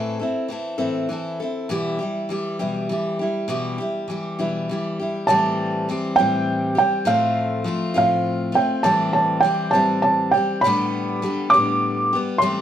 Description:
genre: acoustic folk duo or small band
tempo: 67 BPM (dotted quarters)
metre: 6/8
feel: straight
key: A minor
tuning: A4 = 441 Hz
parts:
  - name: picked steel-string acoustic guitar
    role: accompaniment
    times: 0.0-12.6 s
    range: A2 to A4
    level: -23 LUFS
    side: left 2 dB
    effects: none
  - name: felt-muted upright piano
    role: melody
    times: 5.3-12.6 s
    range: F5 to D6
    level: -18 LUFS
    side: right 2 dB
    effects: none
room: moderate studio reverb, RT60 0.7 s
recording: none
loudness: -19 LUFS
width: side -10 dB against mid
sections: 0.0-5.3 A section; 5.3-12.6 B section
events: none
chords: 0.0 Am; 1.7 Em/B; 5.3 Am7; 7.1 F/A; 8.9 Am7; 10.6 Gadd9/A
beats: 0.81 | 1.70 2.60 | 3.49 4.39 | 5.28 6.17 | 7.07 7.96 | 8.85 9.74 | 10.63 11.53 | 12.42

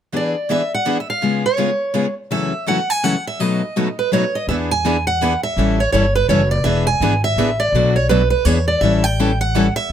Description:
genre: acoustic string swing (jazz manouche)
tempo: 166 BPM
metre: 3/4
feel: swing 62% on 8ths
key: E mixolydian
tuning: A4 = 440 Hz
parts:
  - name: picked steel-string acoustic guitar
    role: accompaniment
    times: 0.1-9.7 s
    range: F#2 to A4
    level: -20 LUFS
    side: left 5 dB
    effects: none
  - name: picked steel-string acoustic guitar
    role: accompaniment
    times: 0.1-9.7 s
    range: B2 to B4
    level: -24 LUFS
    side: right 7 dB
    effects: none
  - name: picked steel-string acoustic guitar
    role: melody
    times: 0.2-9.9 s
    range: B4 to G#5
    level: -19 LUFS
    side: right 2 dB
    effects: none
  - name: upright bass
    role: bass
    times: 4.5-9.9 s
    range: E1 to E2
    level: -19 LUFS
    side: equal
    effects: none
room: light reverb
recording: close, detailed microphones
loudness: -15 LUFS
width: side -9 dB against mid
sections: 0.1-4.5 A section; 4.5-9.9 B section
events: none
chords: 0.1 E7; 1.2 C#7; 2.3 F#m7; 3.4 B7; 4.5 E7; 5.6 A7; 6.7 E7; 7.7 Bm7; 8.5 E7; 8.8 A7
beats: | 0.12 0.49 0.85 | 1.21 1.58 1.94 | 2.30 2.67 3.03 | 3.39 3.75 4.12 | 4.48 4.84 5.20 | 5.56 5.93 6.29 | 6.65 7.01 7.37 | 7.74 8.10 8.46 | 8.82 9.18 9.54 | 9.90

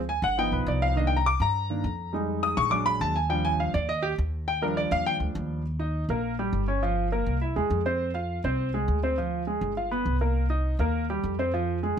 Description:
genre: Afro-Cuban jazz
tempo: 204 BPM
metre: 4/4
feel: straight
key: Eb major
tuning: A4 = 440 Hz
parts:
  - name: upright bass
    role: bass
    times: 0.0-12.0 s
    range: G1 to G2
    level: -28 LUFS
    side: equal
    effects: none
  - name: warm concert grand piano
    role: accompaniment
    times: 0.1-12.0 s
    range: Eb3 to Eb6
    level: -26 LUFS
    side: equal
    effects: none
room: light reverb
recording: close, detailed microphones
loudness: -24 LUFS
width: side -8 dB against mid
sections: 0.0-5.7 A section; 5.7-12.0 B section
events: grand piano solo 0.0-5.7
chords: 0.4 G7b13; 1.0 Cm9; 2.1 Fm9; 2.7 Bbaug7; 3.3 Ebmaj9; 5.7 Eb; 6.8 Gm7; 7.4 Caug; 8.0 Fm; 9.2 Ddim; 9.8 G7; 10.4 Cm7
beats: 0.09 0.38 0.67 | 0.97 1.26 1.55 1.84 | 2.14 2.43 2.72 3.02 | 3.31 3.60 3.89 4.18 | 4.48 4.77 5.06 5.36 | 5.65 5.94 6.24 6.53 | 6.83 7.12 7.41 7.71 | 8.00 8.29 8.59 8.88 | 9.18 9.47 9.76 10.06 | 10.35 10.65 10.94 11.24 | 11.53 11.83

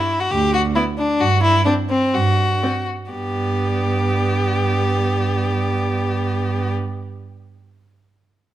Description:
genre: quick classical-period movement for string quartet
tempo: 119-136 BPM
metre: 4/4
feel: rubato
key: G major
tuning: A4 = 441 Hz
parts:
  - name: clear violin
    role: second line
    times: 0.0-6.7 s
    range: C4 to G4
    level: -20 LUFS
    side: left 2 dB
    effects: none
  - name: rich cello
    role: bass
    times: 0.3-6.7 s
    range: D2 to G2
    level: -21 LUFS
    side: right 3 dB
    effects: none
  - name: rich violin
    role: melody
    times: 0.8-6.7 s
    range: D5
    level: -35 LUFS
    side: left 8 dB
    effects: none
  - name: warm viola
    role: accompaniment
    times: 0.8-6.7 s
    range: B3 to C4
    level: -26 LUFS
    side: right 2 dB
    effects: none
room: light reverb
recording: close, detailed microphones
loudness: -17 LUFS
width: side -13 dB against mid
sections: 0.0-3.1 A section; 3.1-6.9 B section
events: slowing down 0.0-3.1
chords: 0.0 N.C.; 3.1 G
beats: 0.32 0.76 | 1.21 1.66 2.14 2.62 | 3.12 3.60 4.07 4.55 | 5.02 5.50 5.98 6.45

